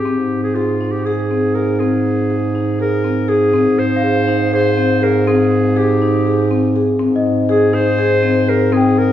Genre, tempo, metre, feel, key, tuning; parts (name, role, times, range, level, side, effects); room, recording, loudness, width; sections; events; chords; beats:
contemporary instrumental, chamber music in an uneven meter; 243 BPM (eighths); 7/8; straight; Ab major; A4 = 440 Hz
warm clarinet; melody; 0.0-9.1 s; F4 to C5; -19 LUFS; left 2 dB
marimba with medium mallets; arpeggios; 0.1-9.1 s; C4 to Ab4; -17 LUFS; left 2 dB
mellow bass clarinet; bass; 0.1-9.1 s; Ab2; -18 LUFS; right 2 dB
large celesta; texture; 4.0-9.1 s; Eb5 to G5; -24 LUFS; left 2 dB
wet recital hall reverb, RT60 1.4 s; heard from further back in the room; -13 LUFS; side -11 dB against mid
0.0-3.5 A section; 3.5-9.1 B section
0.0 Ab
| 0.06 0.31 0.56 0.81 1.06 1.31 1.55 | 1.80 2.05 2.30 2.55 2.80 3.04 3.29 | 3.54 3.79 4.04 4.28 4.53 4.78 5.03 | 5.27 5.52 5.77 6.01 6.26 6.51 6.75 | 7.00 7.25 7.50 7.74 7.99 8.24 8.48 | 8.73 8.98